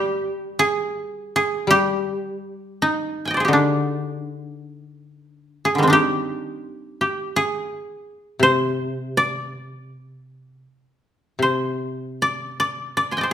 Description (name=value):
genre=japanese traditional, Japanese chamber music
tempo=84 BPM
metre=4/4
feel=uneven beats, rubato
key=G miyako bushi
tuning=A4 = 438 Hz
part: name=koto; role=melody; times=0.0-13.3 s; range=D3 to C6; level=-20 LUFS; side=right 1 dB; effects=none
part: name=koto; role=accompaniment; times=0.0-13.3 s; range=C3 to G3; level=-25 LUFS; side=left 3 dB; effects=none
room=moderate recital hall reverb, RT60 1.2 s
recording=minimal, uncompressed stereo recording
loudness=-19 LUFS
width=side -10 dB against mid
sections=0.0-13.3 A section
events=none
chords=none